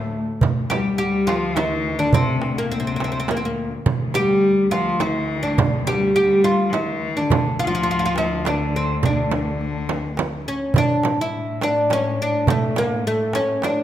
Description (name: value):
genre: Arabic maqam ensemble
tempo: 104 BPM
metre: 3/4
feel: straight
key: D maqam bayati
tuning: A4 = 441 Hz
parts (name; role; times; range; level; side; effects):
- oud; melody; 0.0-13.8 s; A3 to G4; -21 LUFS; right 1 dB; none
- rich cello; second line; 0.0-10.5 s; A2 to G3; -24 LUFS; left 5 dB; none
- rich symphonic cello section; drone; 0.0-13.8 s; D2 to A2; -29 LUFS; left 2 dB; none
- darbuka; percussion; 0.4-13.8 s; none; -23 LUFS; right 2 dB; none
- frame drum; percussion; 0.4-13.8 s; none; -26 LUFS; right 5 dB; none
room: moderate recital hall reverb, RT60 1.6 s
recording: close, detailed microphones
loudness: -18 LUFS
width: side -11 dB against mid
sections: 0.0-10.8 A section; 10.8-13.8 B section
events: none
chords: none